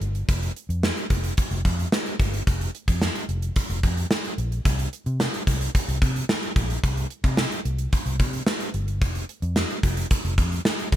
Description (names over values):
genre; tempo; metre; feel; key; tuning
1980s-style pop; 110 BPM; 4/4; straight; unclear; A4 = 440 Hz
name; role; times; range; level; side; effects
vintage muted fingered electric bass; bass; 0.0-11.0 s; F1 to C3; -26 LUFS; equal; none
gated 80s drum kit; drums; 0.0-11.0 s; hi-hat, kick drum, snare drum; -23 LUFS; equal; none
room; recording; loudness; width
little or no reverb; none; -22 LUFS; side -12 dB against mid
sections
0.0-11.0 A section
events
none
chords
none